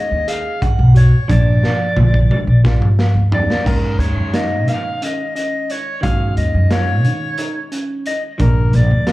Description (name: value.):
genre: progressive instrumental, band music in an uneven meter.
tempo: 178 BPM (eighths).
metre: 7/8.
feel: straight.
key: Eb minor.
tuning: A4 = 439 Hz.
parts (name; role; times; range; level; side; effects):
breathy soprano saxophone; melody; 0.0-9.1 s; Bb4 to Gb5; -22 LUFS; left 1 dB; slapback echo, digital delay.
vintage hollow-body jazz guitar; accompaniment; 0.0-9.1 s; D3 to D4; -28 LUFS; right 2 dB; slapback echo.
upright bass; bass; 0.1-9.1 s; Bb1 to Eb3; -14 LUFS; equal; none.
tine electric piano; arpeggios; 0.3-9.1 s; Db4 to Ab4; -29 LUFS; right 3 dB; slapback echo.
raw garage drum kit; drums; 0.3-9.1 s; crash cymbal, hi-hat, kick drum, snare drum, toms; -18 LUFS; equal; none.
room: studio reverb.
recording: live gig heard through the venue's PA, club reverb.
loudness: -13 LUFS.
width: side -18 dB against mid.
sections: 0.0-3.7 A section; 3.7-9.1 B section.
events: drum fill 1.6-3.7.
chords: 0.0 Ebm7; 1.3 Bb; 3.7 Ebm7; 8.4 Bb.